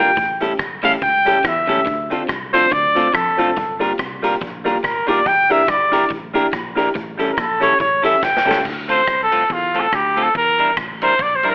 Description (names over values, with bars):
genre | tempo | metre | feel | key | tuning
ska | 142 BPM | 4/4 | swing 56% on 8ths | D minor | A4 = 441 Hz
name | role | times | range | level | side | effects
warm trumpet | melody | 0.0-11.5 s | F4 to G5 | -15 LUFS | equal | none
clean electric guitar | accompaniment | 0.0-11.5 s | G3 to Bb4 | -21 LUFS | right 1 dB | none
electric guitar at the edge of break-up | riff | 0.0-8.6 s | E2 to F3 | -31 LUFS | equal | none
dark upright piano | stabs | 0.0-8.6 s | A3 to A4 | -22 LUFS | left 1 dB | tape echo
fingered electric bass | bass | 0.0-11.5 s | Eb1 to F2 | -34 LUFS | equal | none
street-band drum kit | drums | 0.2-11.5 s | crash cymbal, hi-hat, kick drum, ride cymbal, rim click, snare drum | -25 LUFS | equal | none
room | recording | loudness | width
light reverb, small room ambience | telephone sound | -14 LUFS | side -28 dB against mid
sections
0.0-8.7 A section; 8.7-11.5 A section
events
trumpet solo 0.0-8.7, 8.7-11.5; drum fill 8.2-8.7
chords
0.2 A7; 1.9 Dm7; 3.6 Gm7; 5.3 Em7b5; 7.0 A7; 8.7 Dm7; 10.3 Em7b5